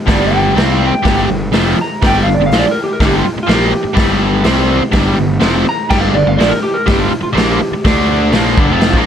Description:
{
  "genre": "garage rock duo or trio",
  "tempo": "124 BPM",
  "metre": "4/4",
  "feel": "straight",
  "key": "unclear",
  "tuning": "A4 = 439 Hz",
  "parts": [
    { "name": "clean lap steel guitar", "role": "melody", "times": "0.1-8.8 s", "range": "F4 to Bb5", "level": "-18 LUFS", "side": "right 1 dB", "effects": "none" },
    { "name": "biting overdriven guitar", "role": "riff", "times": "0.1-9.1 s", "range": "F2 to D4", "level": "-14 LUFS", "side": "equal", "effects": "none" },
    { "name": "fuzz picked electric bass", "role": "bass", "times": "0.1-9.1 s", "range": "F1 to D2", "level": "-18 LUFS", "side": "equal", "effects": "overdrive" },
    { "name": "raw garage drum kit", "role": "drums", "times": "0.1-9.1 s", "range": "crash cymbal, hi-hat, kick drum, snare drum", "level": "-16 LUFS", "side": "equal", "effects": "none" }
  ],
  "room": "light reverb",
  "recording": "none",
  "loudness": "-10 LUFS",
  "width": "side -9 dB against mid",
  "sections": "0.0-9.1 A section",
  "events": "electric slide guitar solo 0.0-9.1",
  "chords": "0.0 G5; 7.9 D5; 8.3 G5"
}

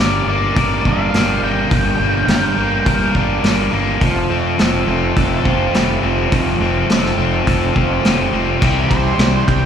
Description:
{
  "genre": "classic rock",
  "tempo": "104 BPM",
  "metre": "4/4",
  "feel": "straight",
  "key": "G dorian",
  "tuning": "A4 = 440 Hz",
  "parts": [
    { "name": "octave-fuzz lead guitar", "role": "melody", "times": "0.0-3.1, 8.9-9.7 s", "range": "C5 to G5", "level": "-21 LUFS", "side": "equal", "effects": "distortion, slapback echo" },
    { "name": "biting overdriven guitar", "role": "riff", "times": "0.0-9.7 s", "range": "G2 to E4", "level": "-21 LUFS", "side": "right 12 dB", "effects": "slapback echo" },
    { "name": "cranked stack guitar", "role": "riff", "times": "0.0-9.7 s", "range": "G2 to Bb4", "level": "-19 LUFS", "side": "left 10 dB", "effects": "overdrive, slapback echo" },
    { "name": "fuzz fingered electric bass", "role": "bass", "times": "0.0-9.7 s", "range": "F1 to F2", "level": "-19 LUFS", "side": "equal", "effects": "overdrive" },
    { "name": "vintage drum kit", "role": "drums", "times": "0.6-9.6 s", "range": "crash cymbal, hi-hat, kick drum, ride cymbal, snare drum", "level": "-18 LUFS", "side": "equal", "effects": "none" }
  ],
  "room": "small room ambience",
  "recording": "live gig heard through the venue's PA, club reverb",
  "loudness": "-13 LUFS",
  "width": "side -8 dB against mid",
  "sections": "0.0-8.6 A section; 8.6-9.7 B section",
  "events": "none",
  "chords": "0.0 Gm; 4.0 Fadd9; 8.6 C"
}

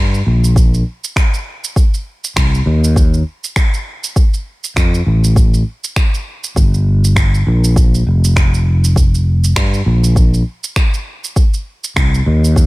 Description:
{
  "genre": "organic downtempo",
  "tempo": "100 BPM",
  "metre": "4/4",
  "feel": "swing 57% on 16ths",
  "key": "G minor",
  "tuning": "A4 = 440 Hz",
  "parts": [
    { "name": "sustaining fretless electric bass", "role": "bass", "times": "0.0-12.7 s", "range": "F1 to G2", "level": "-12 LUFS", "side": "equal", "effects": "analog chorus" },
    { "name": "electronic shaker and finger snaps", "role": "drums", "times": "0.1-12.7 s", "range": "none", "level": "-21 LUFS", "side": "right 2 dB", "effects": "none" },
    { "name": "electronic kick drum", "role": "drums", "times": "0.6-12.7 s", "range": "none", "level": "-12 LUFS", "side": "equal", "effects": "overdrive" }
  ],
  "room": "little or no reverb",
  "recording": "none",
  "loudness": "-11 LUFS",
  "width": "side -20 dB against mid",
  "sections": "0.0-12.7 A section",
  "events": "none",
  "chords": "none"
}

